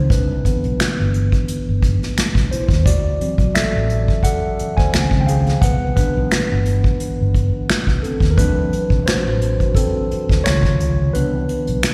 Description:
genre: R&B, neo-soul.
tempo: 87 BPM.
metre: 4/4.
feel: swing 54% on 16ths.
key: unclear.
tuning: A4 = 440 Hz.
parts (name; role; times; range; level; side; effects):
mellow tine electric piano; accompaniment; 0.0-11.9 s; B#2 to G#5; -23 LUFS; equal; slapback echo.
fretless electric bass; bass; 0.0-11.9 s; G1 to D#2; -21 LUFS; equal; subtle chorus.
unplugged drum kit; drums; 0.1-11.9 s; finger snaps, hi-hat, kick drum, snare drum; -20 LUFS; equal; none.
room: studio ambience.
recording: live gig heard through the venue's PA, recital hall reverb.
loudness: -18 LUFS.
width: mono.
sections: 0.0-11.9 A section.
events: tine electric piano solo 0.0-11.9; break 11.1-11.9.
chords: 0.1 Cmaj9; 2.9 D7; 4.9 C#maj9; 5.6 Cmaj9; 8.4 D7; 10.4 C#maj9; 11.1 Cmaj9.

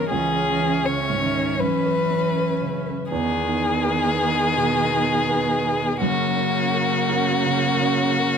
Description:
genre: neoclassical piano and strings.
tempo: 83 BPM.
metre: 4/4.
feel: rubato.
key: unclear.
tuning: A4 = 440 Hz.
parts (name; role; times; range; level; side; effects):
rich violin; melody; 0.0-8.4 s; F#4 to C#5; -22 LUFS; left 3 dB; none.
rich cello; second line; 0.0-8.4 s; C#3 to E3; -27 LUFS; right 6 dB; none.
dark baby grand piano; accompaniment; 0.0-8.4 s; C#2 to C#5; -26 LUFS; right 1 dB; none.
warm viola; accompaniment; 0.0-8.4 s; A#3 to C#4; -28 LUFS; right 3 dB; none.
rich chamber string section; sustained chords; 0.0-8.4 s; B3 to E5; -33 LUFS; right 1 dB; none.
room: moderate recital hall reverb, RT60 1.5 s.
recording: close, detailed microphones.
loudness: -19 LUFS.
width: side -7 dB against mid.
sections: 0.0-3.1 A section; 3.1-8.4 B section.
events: none.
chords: 0.1 C#m; 1.6 F#7sus4; 3.1 Emaj7; 6.0 F#.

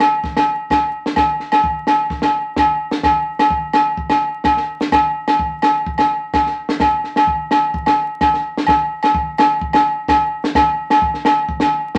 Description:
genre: highlife.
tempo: 128 BPM.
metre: 4/4.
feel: straight.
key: none.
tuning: none.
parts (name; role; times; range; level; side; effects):
compact cocktail drum kit; drums; 0.0-12.0 s; kick drum, snare drum; -23 LUFS; equal; none.
agogo bells; percussion; 0.0-12.0 s; none; -18 LUFS; equal; none.
room: moderate studio reverb, RT60 0.5 s.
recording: vinyl crackle.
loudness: -17 LUFS.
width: mono.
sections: 0.0-9.1 A section; 9.1-12.0 A section.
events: none.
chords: none.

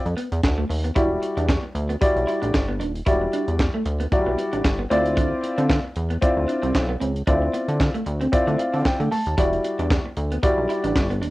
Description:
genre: early-eighties boogie funk.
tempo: 114 BPM.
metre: 4/4.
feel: swing 56% on 16ths.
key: unclear.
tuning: A4 = 440 Hz.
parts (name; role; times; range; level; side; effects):
warm baby grand piano; accompaniment; 0.0-11.0 s; F#3 to A5; -23 LUFS; left 1 dB; none.
chorused synth bass; bass; 0.1-11.3 s; D#1 to D3; -25 LUFS; equal; none.
tight funk drum kit; drums; 0.1-11.3 s; handclaps, hi-hat, kick drum, snare drum; -23 LUFS; equal; cassette tape.
electric guitar at the edge of break-up; riff; 0.2-11.3 s; A3 to E4; -28 LUFS; right 2 dB; wide subtle chorus.
room: light reverb.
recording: home recording on cassette.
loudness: -20 LUFS.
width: side -18 dB against mid.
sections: 1.0-11.3 A section.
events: grand piano fill 8.3-9.4.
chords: 0.0 Dmadd9; 1.0 Em9; 4.9 Dm9; 9.4 Em9.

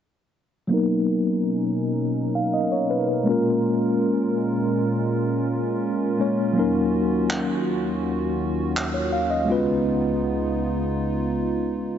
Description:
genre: contemporary R&B.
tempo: 82 BPM.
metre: 4/4.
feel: straight.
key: unclear.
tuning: A4 = 440 Hz.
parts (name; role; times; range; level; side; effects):
mellow tine electric piano; accompaniment; 0.7-12.0 s; F#3 to F5; -22 LUFS; left 2 dB; medium stereo tremolo, low-pass filter.
hollow soft pad; sustained chords; 0.7-12.0 s; Db2 to A#4; -26 LUFS; right 3 dB; chorus, low-pass filter.
handclaps; drums; 7.3-8.9 s; none; -32 LUFS; right 1 dB; none.
room: light reverb.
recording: nothing above 7.8 kHz.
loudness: -21 LUFS.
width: side -9 dB against mid.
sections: 0.7-12.0 A section.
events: filter sweep 0.7-12.0.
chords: 0.7 Bmaj7; 3.3 Bbm7; 6.6 Ebm7; 9.5 Db7.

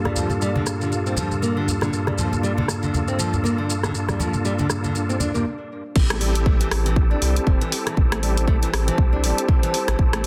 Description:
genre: afro house.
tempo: 119 BPM.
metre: 4/4.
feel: swing 57% on 16ths.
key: A phrygian.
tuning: A4 = 440 Hz.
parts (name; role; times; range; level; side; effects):
dark analog pad; sustained chords; 0.0-10.3 s; Bb3 to A5; -33 LUFS; equal; chorus, sidechain pumping.
bright tonewheel organ; stabs; 0.0-10.3 s; G2 to A4; -28 LUFS; equal; chorus vibrato, fast rotary speaker, sidechain pumping, digital delay.
nylon-string guitar; arpeggios; 0.1-10.2 s; D3 to D4; -30 LUFS; equal; sidechain pumping, digital delay.
house drum kit; drums; 0.1-10.3 s; crash cymbal, hi-hat, rim click; -29 LUFS; equal; soft clipping on snare, low-pass filter on snare, low-pass filter on cymbals, low-pass filter on hats, low-pass filter on room.
congas; percussion; 0.1-5.4 s; none; -30 LUFS; equal; none.
maracas; percussion; 0.2-5.4 s; none; -34 LUFS; equal; none.
round analog bass; bass; 6.0-10.3 s; E1 to C2; -25 LUFS; equal; tube saturation, sidechain pumping.
electronic kick drum; drums; 6.0-10.1 s; none; -20 LUFS; equal; none.
room: light reverb, digital ambience.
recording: dense, heavily limited modern master.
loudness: -21 LUFS.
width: mono.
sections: 0.0-6.0 A section; 6.0-10.3 B section.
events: stop 5.5-6.0; drop 6.0-10.3.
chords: 0.0 Gm7; 6.0 Am7.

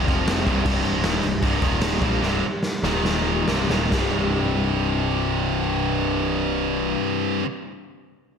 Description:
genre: hard rock.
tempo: 133-157 BPM.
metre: 4/4.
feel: straight.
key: unclear.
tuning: A4 = 438 Hz.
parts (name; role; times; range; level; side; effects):
scooped high-gain guitar; riff; 0.0-7.5 s; C2 to Bb3; -25 LUFS; right 9 dB; distortion.
tight distorted guitar; riff; 0.0-7.5 s; C2 to Bb3; -26 LUFS; left 9 dB; distortion, slapback echo.
fuzz picked electric bass; bass; 0.0-6.9 s; C1 to Bb1; -27 LUFS; equal; overdrive.
raw garage drum kit; drums; 0.1-4.0 s; crash cymbal, kick drum, snare drum, splash cymbal; -24 LUFS; equal; none.
room: moderate lush hall reverb, RT60 1.7 s, small room reverb.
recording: big arena sound.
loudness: -20 LUFS.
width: side -6 dB against mid.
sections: 0.0-3.9 A section; 3.9-7.5 B section.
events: slowing down 0.7-3.9; drum fill 2.2-3.9.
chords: 0.1 F5; 0.5 C5; 1.6 Eb5; 2.0 C5; 2.8 Eb5; 3.5 C5.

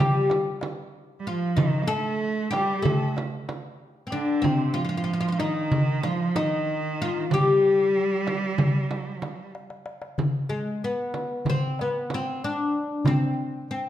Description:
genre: Turkish makam ensemble.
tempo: 188 BPM (eighths).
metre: 9/8.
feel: straight.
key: G makam ussak.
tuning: A4 = 440 Hz.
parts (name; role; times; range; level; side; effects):
oud; melody; 0.0-13.9 s; Ab3 to A4-30c; -25 LUFS; left 3 dB; none.
rich cello; second line; 0.0-9.5 s; C3 to Bb3; -28 LUFS; right 4 dB; none.
frame drum; percussion; 0.0-13.2 s; none; -28 LUFS; right 4 dB; none.
darbuka; percussion; 0.3-13.8 s; none; -29 LUFS; left 2 dB; none.
room: wet recital hall reverb, RT60 1.4 s.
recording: dark, warm production.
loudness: -23 LUFS.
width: side -12 dB against mid.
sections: 0.0-10.2 A section; 10.2-13.9 B section.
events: drum fill 9.5-10.2.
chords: none.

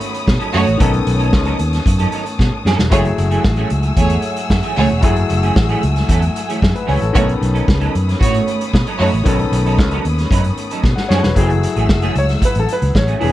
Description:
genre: disco.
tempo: 114 BPM.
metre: 4/4.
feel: straight.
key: F# dorian.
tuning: A4 = 440 Hz.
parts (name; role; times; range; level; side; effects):
clear baby grand piano; accompaniment; 0.0-13.3 s; D#3 to F#5; -23 LUFS; left 5 dB; none.
warm studio string section; sustained chords; 0.0-13.3 s; A3 to E6; -26 LUFS; left 1 dB; none.
vintage drum kit; drums; 0.0-13.3 s; hi-hat, kick drum, snare drum; -18 LUFS; equal; none.
semi-hollow electric guitar; accompaniment; 0.1-13.3 s; E3 to B4; -24 LUFS; right 5 dB; ensemble chorus.
fingered electric bass; bass; 0.3-13.3 s; E1 to B2; -17 LUFS; equal; none.
clear studio string section; second line; 0.5-9.2 s; A3 to C#5; -19 LUFS; right 3 dB; none.
warm concert grand piano; melody; 12.2-13.3 s; A4 to C#5; -20 LUFS; equal; tube saturation.
room: little or no reverb.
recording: none.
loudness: -13 LUFS.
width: side -14 dB against mid.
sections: 0.0-11.4 A section; 11.4-13.3 B section.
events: drum fill 2.4-2.9, 10.8-11.4; grand piano solo 11.4-13.3.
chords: 0.0 B9; 2.9 F#m9; 7.1 B9; 11.4 F#m9.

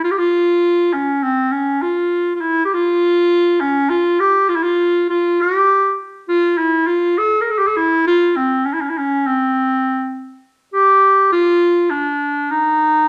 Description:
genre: turkish.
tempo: free time.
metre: none.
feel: none.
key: unclear.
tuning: A4 = 440 Hz.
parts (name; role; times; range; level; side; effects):
bright clarinet; solo; 0.0-13.1 s; C4 to Bb4; -16 LUFS; equal; none.
room: moderate large studio reverb, RT60 1.0 s.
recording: none.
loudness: -16 LUFS.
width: mono.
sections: 0.0-10.7 A section; 10.7-13.1 B section.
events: none.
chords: none.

